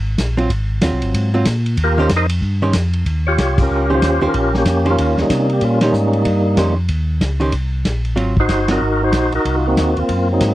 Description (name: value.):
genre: soul jazz organ trio.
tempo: 188 BPM.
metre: 4/4.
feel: swing 62% on 8ths.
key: Eb mixolydian.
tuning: A4 = 440 Hz.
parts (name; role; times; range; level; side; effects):
mellow tonewheel organ; bass; 0.0-10.5 s; G1 to C3; -18 LUFS; equal; overdrive, chorus vibrato, slow rotary speaker.
vintage drum kit; drums; 0.2-10.5 s; crash cymbal, hi-hat, kick drum, ride cymbal, snare drum; -22 LUFS; equal; none.
archtop guitar, miked and amplified; accompaniment; 0.4-8.8 s; Eb3 to C5; -19 LUFS; right 2 dB; none.
percussive tonewheel organ; melody; 1.8-10.5 s; Gb3 to Eb5; -16 LUFS; equal; slow rotary speaker.
room: little or no reverb.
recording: dry, close 1970s-style studio recording.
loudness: -14 LUFS.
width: side -15 dB against mid.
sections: 0.0-3.1 A section; 3.1-10.5 B section.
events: tonewheel organ solo 0.0-3.1; band accent 3.5, 5.8, 8.7.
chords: 0.0 Bb7sus2; 0.5 Ab13; 1.8 Eb13; 8.2 Ab13.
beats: 0.18 | 0.50 0.82 1.14 1.46 | 1.78 2.10 2.42 2.74 | 3.06 3.38 3.70 4.02 | 4.34 4.66 4.98 5.30 | 5.62 5.94 6.26 6.58 | 6.90 7.22 7.54 7.86 | 8.18 8.50 8.82 9.14 | 9.46 9.78 10.10 10.42.